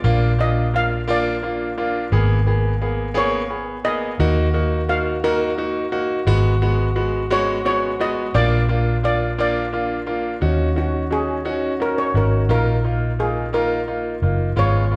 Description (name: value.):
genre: six-eight pop ballad.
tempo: 58 BPM (dotted quarters).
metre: 6/8.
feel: straight.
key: Eb minor.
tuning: A4 = 440 Hz.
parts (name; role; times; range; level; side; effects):
steel pan; melody; 0.0-15.0 s; Gb4 to F5; -26 LUFS; equal; none.
bright grand piano; accompaniment; 0.0-15.0 s; Ab3 to Ab4; -24 LUFS; equal; none.
vintage muted fingered electric bass; bass; 0.0-15.0 s; Gb1 to Eb2; -23 LUFS; equal; none.
room: wet large studio reverb, RT60 1.5 s.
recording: band playing live in one room.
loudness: -20 LUFS.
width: mono.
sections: 0.0-10.4 A section; 10.4-15.0 B section.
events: none.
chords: 0.0 Bb; 2.1 Abmadd9; 4.2 Ebm; 6.3 Abm7; 8.3 Bb; 10.4 Ebm7; 12.5 Bbsus4.